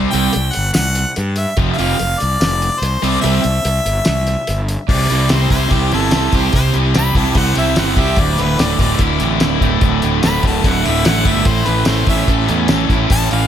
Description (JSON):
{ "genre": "classic rock", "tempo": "146 BPM", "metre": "4/4", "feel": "straight", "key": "unclear", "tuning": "A4 = 442 Hz", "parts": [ { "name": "crunchy overdriven guitar", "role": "riff", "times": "0.0-13.5 s", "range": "D2 to G4", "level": "-19 LUFS", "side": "right 8 dB", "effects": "slapback echo" }, { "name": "tight distorted guitar", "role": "riff", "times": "0.0-13.5 s", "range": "D2 to C5", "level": "-20 LUFS", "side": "left 12 dB", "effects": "distortion, slapback echo" }, { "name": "fuzz fingered electric bass", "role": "bass", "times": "0.0-13.5 s", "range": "D1 to G2", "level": "-19 LUFS", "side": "equal", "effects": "overdrive" }, { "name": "bright harmonica", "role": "melody", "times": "0.1-13.5 s", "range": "G4 to B5", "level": "-20 LUFS", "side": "equal", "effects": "digital delay" }, { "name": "cloth-damped thuddy drum kit", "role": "drums", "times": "0.1-13.4 s", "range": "crash cymbal, hi-hat, kick drum, snare drum, tambourine", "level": "-18 LUFS", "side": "equal", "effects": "none" } ], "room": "moderate lush hall reverb, RT60 1.8 s, small room reverb", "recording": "big arena sound", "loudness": "-13 LUFS", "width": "side -10 dB against mid", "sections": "0.0-4.9 A section; 4.9-13.5 B section", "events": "half time 0.0-4.9; harmonica solo 4.9-13.5", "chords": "0.0 C5; 1.6 F5; 3.0 C; 8.2 Dsus2; 11.5 A" }